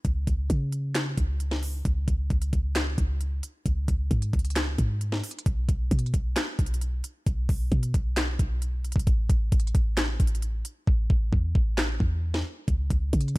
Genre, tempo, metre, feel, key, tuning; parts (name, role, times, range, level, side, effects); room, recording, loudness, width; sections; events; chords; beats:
hip hop, trap; 133 BPM; 4/4; half-time; C# minor; A4 = 440 Hz
clean 808-style bass; bass; 0.0-13.4 s; A1 to C#3; -26 LUFS; equal
trap drum kit; drums; 0.0-13.4 s; handclaps, hi-hat, kick drum, snare drum; -26 LUFS; equal
little or no reverb; -24 LUFS; side -21 dB against mid
0.0-5.5 A section; 5.5-13.4 B section
hi-hats muted 10.9-12.7
| 0.05 0.50 0.95 1.40 | 1.85 2.30 2.75 3.21 | 3.66 4.11 4.56 5.01 | 5.46 5.91 6.36 6.81 | 7.27 7.72 8.17 8.62 | 9.07 9.52 9.97 10.42 | 10.88 11.33 11.78 12.23 | 12.68 13.13